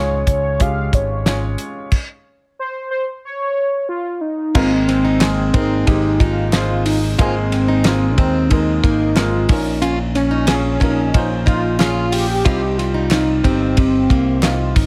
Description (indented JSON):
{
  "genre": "piano-driven pop",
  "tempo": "91 BPM",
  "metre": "4/4",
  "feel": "straight",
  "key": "Ab major",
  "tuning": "A4 = 440 Hz",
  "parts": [
    { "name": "warm velvety synth lead", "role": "melody", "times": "0.0-14.9 s", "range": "C4 to F5", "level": "-22 LUFS", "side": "equal", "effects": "chorus" },
    { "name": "warm concert grand piano", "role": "accompaniment", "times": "0.0-14.9 s", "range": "Ab2 to Db5", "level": "-25 LUFS", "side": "equal", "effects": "none" },
    { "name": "modern bright picked electric bass", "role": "bass", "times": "0.0-14.9 s", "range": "G1 to Eb2", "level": "-23 LUFS", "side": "equal", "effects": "none" },
    { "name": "damped 70s drum kit", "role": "drums", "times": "0.3-14.9 s", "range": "crash cymbal, hi-hat, kick drum, ride cymbal, snare drum", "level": "-21 LUFS", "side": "equal", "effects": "none" },
    { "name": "fingerpicked plugged-in steel-string acoustic guitar", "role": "riff", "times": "4.5-14.6 s", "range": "Bb3 to F4", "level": "-26 LUFS", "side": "equal", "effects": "none" },
    { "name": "group handclap", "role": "percussion", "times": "5.2-14.6 s", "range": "none", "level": "-32 LUFS", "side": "equal", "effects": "none" }
  ],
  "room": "light reverb",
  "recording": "none",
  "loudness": "-17 LUFS",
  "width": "mono",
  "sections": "0.0-4.6 A section; 4.6-14.9 B section",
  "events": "stop 1.9-4.6",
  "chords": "0.0 Db; 4.6 Abadd9; 9.5 Bbm; 12.5 Cm"
}